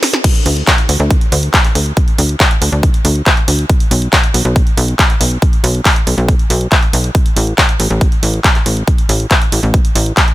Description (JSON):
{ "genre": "uplifting trance", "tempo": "139 BPM", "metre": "4/4", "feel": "straight", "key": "unclear", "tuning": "A4 = 440 Hz", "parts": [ { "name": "punchy analog drum machine", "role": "drums", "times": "0.0-10.3 s", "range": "crash cymbal, handclaps, hi-hat, snare drum", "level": "-15 LUFS", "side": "equal", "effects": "sidechain pumping on hats, sidechain pumping on cymbals" }, { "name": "electronic kick drum", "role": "drums", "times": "0.2-10.3 s", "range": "none", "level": "-12 LUFS", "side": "equal", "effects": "high-pass filter on kick" }, { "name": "tight sequencer bass", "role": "bass", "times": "0.5-10.1 s", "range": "A1 to D2", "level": "-13 LUFS", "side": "equal", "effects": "sidechain pumping" } ], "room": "digital ambience", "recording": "none", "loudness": "-10 LUFS", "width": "side -17 dB against mid", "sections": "0.2-10.3 A section", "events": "drum fill 0.0; drop 0.2-10.3", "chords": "none" }